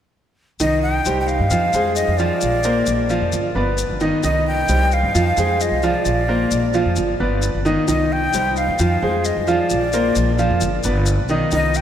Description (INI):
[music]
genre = latin, Cuban son and guajira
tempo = 132 BPM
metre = 4/4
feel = straight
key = C minor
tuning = A4 = 440 Hz
[part]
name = breathy jazz flute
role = melody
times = 0.6-11.8 s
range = D5 to G5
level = -22 LUFS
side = equal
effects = none
[part]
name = bright grand piano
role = arpeggios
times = 0.6-11.8 s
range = Eb3 to F5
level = -19 LUFS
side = equal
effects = none
[part]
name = upright bass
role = bass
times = 0.6-11.8 s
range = G1 to G2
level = -22 LUFS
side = equal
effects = none
[part]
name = maracas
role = percussion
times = 0.6-11.8 s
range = none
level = -31 LUFS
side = left 6 dB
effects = none
[sound]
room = wet cathedral reverb, RT60 5.8 s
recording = in a vast, echoing space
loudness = -16 LUFS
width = side -10 dB against mid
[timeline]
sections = 0.6-11.8 A section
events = none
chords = 0.6 Cm; 1.5 Fm; 2.4 Bbadd9; 3.3 G7; 4.2 Cm; 5.1 Fm; 6.1 Bbadd9; 7.0 G7; 7.9 Cm; 8.8 Fm; 9.7 Bbadd9; 10.6 G7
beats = | 0.60 1.06 1.51 1.97 | 2.42 2.87 3.33 3.78 | 4.24 4.69 5.15 5.60 | 6.06 6.51 6.97 7.43 | 7.88 8.34 8.79 9.25 | 9.71 10.16 10.62 11.07 | 11.53